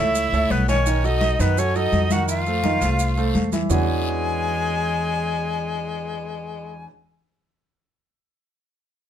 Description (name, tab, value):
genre	Afro-Cuban jazz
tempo	169 BPM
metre	4/4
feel	straight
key	unclear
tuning	A4 = 441 Hz
part	breathy bright jazz flute	melody	0.0-6.9 s	B4 to G#5	-25 LUFS	left 1 dB	none
part	edgy tenor saxophone	second line	0.0-6.9 s	G#3 to F#4	-29 LUFS	left 4 dB	none
part	warm concert grand piano	accompaniment	0.0-6.9 s	D#3 to E5	-26 LUFS	right 4 dB	none
part	upright bass	bass	0.0-6.8 s	B1 to F#2	-24 LUFS	equal	none
part	guiro	percussion	0.1-3.8 s	none	-37 LUFS	left 5 dB	none
part	congas	percussion	0.2-3.8 s	none	-27 LUFS	left 3 dB	none
part	maracas	percussion	0.2-3.8 s	none	-34 LUFS	right 6 dB	none
room	light reverb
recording	minimal, uncompressed stereo recording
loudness	-19 LUFS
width	side -9 dB against mid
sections	0.0-3.7 A section; 3.7-6.5 B section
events	none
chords	0.0 F#m7 (rootless); 0.9 B7; 2.3 F7; 3.7 E13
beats	0.15 0.51 | 0.86 1.22 1.57 1.93 | 2.28 2.64 2.99 3.35 | 3.70 4.06 4.42 4.77 | 5.13 5.48 5.84 6.19